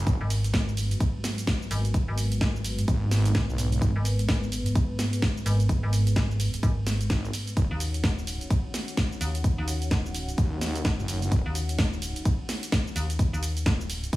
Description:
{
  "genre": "bass house",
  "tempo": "128 BPM",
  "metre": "4/4",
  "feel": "swing 60% on 16ths",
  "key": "G# minor",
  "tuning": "A4 = 440 Hz",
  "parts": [
    { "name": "dark analog pad", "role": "sustained chords", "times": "0.0-14.2 s", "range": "G#3 to F#5", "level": "-33 LUFS", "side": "right 1 dB", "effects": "chorus, sidechain pumping" },
    { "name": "wobble bass", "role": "bass", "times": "0.0-3.9, 7.1-11.4 s", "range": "D#1 to D#2", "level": "-27 LUFS", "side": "equal", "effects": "chorus, tube saturation, sidechain pumping" },
    { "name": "electronic kick drum", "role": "drums", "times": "0.1-14.2 s", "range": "none", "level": "-25 LUFS", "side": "equal", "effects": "none" },
    { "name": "house drum kit", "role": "drums", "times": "0.1-14.2 s", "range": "cabasa, hi-hat, ride cymbal, snare drum", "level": "-32 LUFS", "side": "equal", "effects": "none" },
    { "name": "metallic FM bass", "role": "bass", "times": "0.2-14.1 s", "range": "D#1 to D#2", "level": "-27 LUFS", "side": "equal", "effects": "overdrive, sidechain pumping" }
  ],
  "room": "little or no reverb",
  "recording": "studio reverb",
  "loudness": "-24 LUFS",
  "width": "side -17 dB against mid",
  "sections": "0.0-14.2 A section",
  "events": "none",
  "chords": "0.1 G#m7; 7.6 D#m7",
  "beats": "| 0.07 0.54 1.00 1.47 | 1.94 2.41 2.88 3.35 | 3.82 4.29 4.75 5.22 | 5.69 6.16 6.63 7.10 | 7.57 8.04 8.51 8.97 | 9.44 9.91 10.38 10.85 | 11.32 11.79 12.26 12.72 | 13.19 13.66 14.13"
}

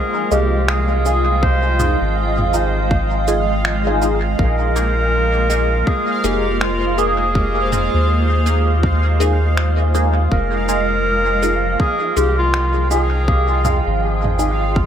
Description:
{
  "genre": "ambient dub",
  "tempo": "81 BPM",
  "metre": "4/4",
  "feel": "swing 60% on 16ths",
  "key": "F minor",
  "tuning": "A4 = 438 Hz",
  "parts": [
    { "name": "warm clarinet", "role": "melody", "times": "0.0-14.0 s", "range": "F4 to C5", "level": "-21 LUFS", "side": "equal", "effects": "dub echo" },
    { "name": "granular cloud pad", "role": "sustained chords", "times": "0.0-14.9 s", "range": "F3 to G5", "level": "-24 LUFS", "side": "right 1 dB", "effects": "built-in reverb" },
    { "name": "bubbling stepped-filter texture", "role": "texture", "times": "0.0-14.9 s", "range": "F5", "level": "-26 LUFS", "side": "right 5 dB", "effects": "chorus, built-in reverb" },
    { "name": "filtered dub chord stab", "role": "stabs", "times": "0.3-14.7 s", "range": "Bb3 to Ab4", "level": "-23 LUFS", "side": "left 1 dB", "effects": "phaser, wide subtle chorus, cassette tape, dub echo" },
    { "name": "soft dub sub bass", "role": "bass", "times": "0.3-14.9 s", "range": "F1 to Eb2", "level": "-18 LUFS", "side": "equal", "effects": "none" },
    { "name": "organic electronic drum kit", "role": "drums", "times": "0.3-14.6 s", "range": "finger snaps, shaker, toms", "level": "-25 LUFS", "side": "right 1 dB", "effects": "studio reverb, dub echo" },
    { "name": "electronic kick drum", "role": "drums", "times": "1.4-14.9 s", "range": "none", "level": "-18 LUFS", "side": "equal", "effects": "studio reverb" }
  ],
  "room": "light reverb",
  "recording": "none",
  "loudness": "-14 LUFS",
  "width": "side -9 dB against mid",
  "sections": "0.0-14.9 A section",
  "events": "none",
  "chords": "0.0 Fm7; 4.4 Bb7sus4; 10.3 Fm7",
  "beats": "0.68 | 1.43 2.17 2.91 3.65 | 4.39 5.13 5.87 6.61 | 7.35 8.09 8.83 9.57 | 10.31 11.05 11.79 12.54 | 13.28 14.02 14.76"
}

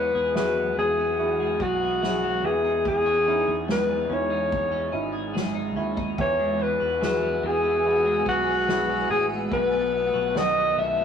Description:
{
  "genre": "pop ballad",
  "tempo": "72 BPM",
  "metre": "4/4",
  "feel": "straight",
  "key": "E major",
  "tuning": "A4 = 438 Hz",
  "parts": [
    { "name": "breathy alto saxophone", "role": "melody", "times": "0.0-11.0 s", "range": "F#4 to E5", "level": "-23 LUFS", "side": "left 2 dB", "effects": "none" },
    { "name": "felt-muted upright piano", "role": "accompaniment", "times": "0.0-11.0 s", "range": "B2 to A4", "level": "-31 LUFS", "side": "right 2 dB", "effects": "none" },
    { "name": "twelve-string electric guitar", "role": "arpeggios", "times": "0.0-11.0 s", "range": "E2 to G#4", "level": "-32 LUFS", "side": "left 2 dB", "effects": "phaser" },
    { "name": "fingered electric bass", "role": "bass", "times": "0.0-11.0 s", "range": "G#1 to E2", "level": "-34 LUFS", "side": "right 1 dB", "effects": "none" },
    { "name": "soft-mallet drum kit", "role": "drums", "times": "0.3-11.0 s", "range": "kick drum, ride cymbal, snare drum", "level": "-34 LUFS", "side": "equal", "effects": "none" },
    { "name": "granular cloud pad", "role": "sustained chords", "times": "7.0-11.0 s", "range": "B4 to E6", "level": "-34 LUFS", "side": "equal", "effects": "built-in reverb" }
  ],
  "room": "wet stone room reverb, RT60 1.1 s",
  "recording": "rough rehearsal-room recording, warm saturation",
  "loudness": "-21 LUFS",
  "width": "side -7 dB against mid",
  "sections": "0.0-11.0 A section",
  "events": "none",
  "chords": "0.0 Eadd9; 2.4 C#madd9/E; 6.2 Eadd9; 9.5 B7",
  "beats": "0.35 1.18 2.02 | 2.85 3.68 4.52 5.35 | 6.18 7.02 7.85 8.68 | 9.52 10.35"
}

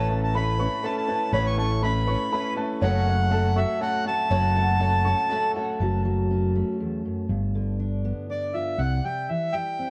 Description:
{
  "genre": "folk",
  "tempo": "121 BPM",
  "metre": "3/4",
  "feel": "straight",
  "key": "unclear",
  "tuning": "A4 = 440 Hz",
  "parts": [
    { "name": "accordion", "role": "melody", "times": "0.0-5.5, 8.3-9.9 s", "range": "D5 to C#6", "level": "-29 LUFS", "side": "equal", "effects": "analog delay" },
    { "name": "clear upright piano", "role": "accompaniment", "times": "0.0-5.8 s", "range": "F#1 to E5", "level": "-36 LUFS", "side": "equal", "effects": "none" },
    { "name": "picked twelve-string acoustic guitar", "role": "accompaniment", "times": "0.0-5.8 s", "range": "F#2 to B4", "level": "-33 LUFS", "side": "equal", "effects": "subtle chorus" },
    { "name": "dark upright piano", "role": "arpeggios", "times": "0.0-5.8 s", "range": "C#5 to C#6", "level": "-34 LUFS", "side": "equal", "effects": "none" },
    { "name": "picked electric bass", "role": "bass", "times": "0.0-9.0 s", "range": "F#1 to C2", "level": "-26 LUFS", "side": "equal", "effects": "none" },
    { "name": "fingerpicked steel-string acoustic guitar", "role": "accompaniment", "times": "5.8-9.9 s", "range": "E2 to F#4", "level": "-32 LUFS", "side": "equal", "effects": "none" }
  ],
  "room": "light reverb",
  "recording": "worn, warbling old tape, cassette tape, warbly pitch drift",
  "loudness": "-25 LUFS",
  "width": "mono",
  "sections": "0.0-5.8 A section; 5.8-8.8 B section; 8.8-9.9 C section",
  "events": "none",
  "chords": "0.0 Aadd9; 2.8 F#m; 7.3 G7; 8.8 C",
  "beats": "0.35 0.84 | 1.34 1.83 2.33 | 2.82 3.32 3.81 | 4.31 4.80 5.30 | 5.80 6.29 6.79 | 7.29 7.79 8.29 | 8.79 9.29 9.79"
}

